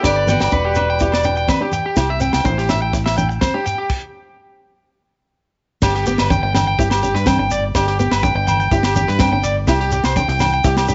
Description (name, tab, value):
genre	highlife guitar band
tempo	125 BPM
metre	4/4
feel	straight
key	G major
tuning	A4 = 442 Hz
part	picked steel-string acoustic guitar	melody	0.0-1.7 s	F#4 to D5	-23 LUFS	equal	none
part	warm cor anglais	second line	0.0-1.7 s	B4	-30 LUFS	equal	none
part	flamenco guitar	accompaniment	0.0-10.9 s	G3 to E4	-27 LUFS	equal	none
part	electric guitar at the edge of break-up	arpeggios	0.0-10.9 s	G4 to G5	-22 LUFS	equal	slapback echo
part	fingered electric bass	bass	0.0-10.9 s	E1 to G2	-23 LUFS	equal	none
part	tight funk drum kit	drums	0.0-10.9 s	crash cymbal, kick drum, snare drum	-23 LUFS	equal	none
part	agogo bells	percussion	0.0-10.9 s	none	-27 LUFS	equal	none
part	congas	percussion	0.0-10.9 s	none	-29 LUFS	equal	none
part	shekere	percussion	0.1-10.9 s	none	-30 LUFS	equal	none
room	light reverb, small room ambience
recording	nothing above 7.8 kHz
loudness	-17 LUFS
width	mono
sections	0.0-5.8 A section; 5.8-10.9 B section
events	stop 3.9-5.8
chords	0.0 G; 2.0 C; 3.9 N.C.; 5.8 G; 9.7 C